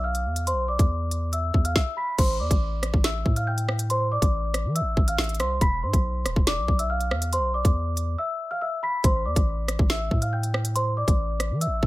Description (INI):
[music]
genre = hip hop, drill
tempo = 140 BPM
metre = 4/4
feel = half-time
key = A minor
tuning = A4 = 438 Hz
[part]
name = celesta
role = melody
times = 0.0-11.9 s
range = C5 to B6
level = -28 LUFS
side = equal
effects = ping-pong delay
[part]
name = long sustained 808-style bass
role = bass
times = 0.0-11.9 s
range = D1 to E3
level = -27 LUFS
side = equal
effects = none
[part]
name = drill drum kit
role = drums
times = 0.1-11.9 s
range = crash cymbal, hi-hat, kick drum, rim click, snare drum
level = -22 LUFS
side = equal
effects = none
[sound]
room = little or no reverb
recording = none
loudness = -22 LUFS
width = side -18 dB against mid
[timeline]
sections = 0.0-2.2 A section; 2.2-11.9 B section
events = break 8.2-9.0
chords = 0.0 E5; 2.2 Am7; 5.6 E5; 9.0 Am7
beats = 0.04 | 0.47 0.90 1.33 1.76 | 2.18 2.61 3.04 3.47 | 3.90 4.33 4.76 5.18 | 5.61 6.04 6.47 6.90 | 7.33 7.76 8.18 8.61 | 9.04 9.47 9.90 10.33 | 10.76 11.18 11.61